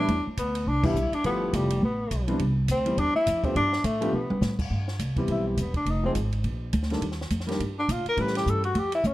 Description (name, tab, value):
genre	jazz, small-group swing and bop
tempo	208 BPM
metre	4/4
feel	swing 59% on 8ths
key	C major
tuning	A4 = 440 Hz
part	breathy tenor saxophone	melody	0.0-9.1 s	G3 to B4	-27 LUFS	left 1 dB	plate reverb
part	warm concert grand piano	accompaniment	0.0-8.6 s	Eb3 to A4	-30 LUFS	equal	none
part	upright bass	bass	0.0-9.1 s	E1 to B2	-28 LUFS	equal	none
part	compact cocktail drum kit	drums	0.1-9.1 s	crash cymbal, hi-hat, kick drum, ride cymbal, snare drum, toms	-34 LUFS	equal	none
room	moderate studio reverb, RT60 0.8 s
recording	dark, warm production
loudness	-24 LUFS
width	side -16 dB against mid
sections	0.0-4.7 A section; 4.7-9.1 B section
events	band accent 0.8; drum fill 4.1; tenor saxophone solo 4.7-9.1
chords	0.1 Em7; 1.2 G13; 2.4 Cmaj7; 3.6 Gadd9; 4.7 Cmaj7; 5.9 Fm7; 6.4 Bb; 7.0 Eb; 8.2 A7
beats	| 0.09 0.38 0.66 0.95 | 1.24 1.53 1.82 2.11 | 2.40 2.69 2.97 3.26 | 3.55 3.84 4.13 4.42 | 4.71 5.00 5.28 5.57 | 5.86 6.15 6.44 6.73 | 7.02 7.31 7.60 7.88 | 8.17 8.46 8.75 9.04